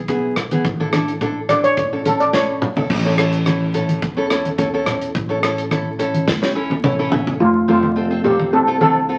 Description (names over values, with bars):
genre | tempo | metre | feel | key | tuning
calypso | 107 BPM | 4/4 | swing 53% on 16ths | unclear | A4 = 440 Hz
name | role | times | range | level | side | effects
upright bass | bass | 0.0-9.2 s | F1 to E2 | -28 LUFS | equal | none
nylon-string guitar | accompaniment | 0.1-9.2 s | B3 to E5 | -24 LUFS | equal | none
modern studio drum kit | drums | 0.1-7.4 s | crash cymbal, hi-hat, kick drum, rim click, snare drum, toms | -25 LUFS | equal | none
congas | percussion | 0.4-8.9 s | none | -28 LUFS | equal | none
steel pan | melody | 1.5-2.9, 7.4-9.2 s | A3 to D5 | -18 LUFS | equal | none
room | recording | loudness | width
wet studio reverb, RT60 0.7 s | very old 78 rpm record, vinyl crackle | -18 LUFS | mono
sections
0.0-2.9 A section; 2.9-7.4 B section; 7.4-9.2 C section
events
steel pan solo 0.0-2.9; drum fill 2.3-2.9, 6.3-7.4; nylon-string guitar fill 6.3-7.4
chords
0.0 E; 0.7 Asus4; 1.8 A; 7.4 F